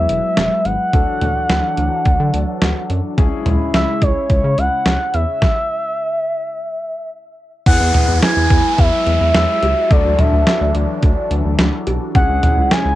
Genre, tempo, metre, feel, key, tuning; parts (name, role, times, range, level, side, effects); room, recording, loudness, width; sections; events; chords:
synth-pop; 107 BPM; 4/4; straight; E mixolydian; A4 = 439 Hz
expressive synth lead; melody; 0.0-13.0 s; C#5 to G#5; -18 LUFS; equal; chorus, cassette tape, analog delay
warm concert grand piano; accompaniment; 0.0-13.0 s; B3 to A4; -26 LUFS; left 8 dB; cassette tape
phased analog pad; sustained chords; 0.0-13.0 s; C#3 to E4; -24 LUFS; right 1 dB; phaser, chorus, cassette tape
rubbery square bass; bass; 0.0-13.0 s; E1 to D3; -19 LUFS; equal
detuned 8-bit digital drum machine; drums; 0.1-12.8 s; cowbell, crash cymbal, hi-hat, kick drum, snare drum, toms; -16 LUFS; equal; cassette tape
downlifter; sound effects; 7.7-12.2 s; -27 LUFS; right 1 dB
moderate booth ambience, RT60 0.2 s; home recording on cassette; -13 LUFS; side -15 dB against mid
0.0-7.7 A section; 7.7-13.0 B section
stop 5.4-7.7
0.0 Eadd9; 0.9 Dadd9; 3.2 C#m; 5.4 N.C.; 7.7 Eadd9; 9.9 Dadd9; 12.2 C#m